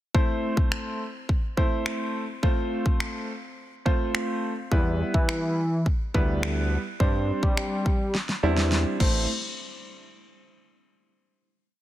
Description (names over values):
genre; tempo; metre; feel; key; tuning
dance-pop; 105 BPM; 4/4; straight; A minor; A4 = 440 Hz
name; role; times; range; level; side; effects
clear concert grand piano; accompaniment; 0.1-9.3 s; G3 to C5; -28 LUFS; right 1 dB; sidechain pumping
pop drum kit; drums; 0.1-9.1 s; crash cymbal, finger snaps, kick drum, snare drum; -26 LUFS; equal; soft clipping on snare
fat analog bass; bass; 4.7-9.3 s; A1 to G3; -26 LUFS; equal; sidechain pumping
room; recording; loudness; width
light reverb, digital ambience; dense, heavily limited modern master; -23 LUFS; side -14 dB against mid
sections
0.1-9.3 verse; 9.3-11.6 final hit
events
drum fill 8.1-9.3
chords
0.1 Am; 2.4 F; 4.7 Em; 7.0 Gsus4; 9.0 Am; 9.3 N.C.